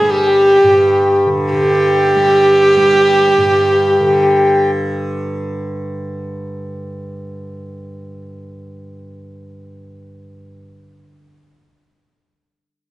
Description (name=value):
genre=indian classical, Hindustani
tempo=free time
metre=none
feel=none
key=unclear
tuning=A4 = 442 Hz
part: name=rich sarangi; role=melody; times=0.0-4.5 s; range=G4 to Ab4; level=-12 LUFS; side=right 1 dB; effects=none
part: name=pedal harmonium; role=second line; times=0.0-4.7 s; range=G4 to Ab4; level=-18 LUFS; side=left 3 dB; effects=none
part: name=tanpura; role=drone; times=0.0-11.2 s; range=G2 to G3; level=-22 LUFS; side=right 1 dB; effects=none
room=moderate recital hall reverb, RT60 1.6 s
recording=nothing above 10.8 kHz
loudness=-10 LUFS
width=side -17 dB against mid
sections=0.0-1.5 A section; 1.5-4.3 B section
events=none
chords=none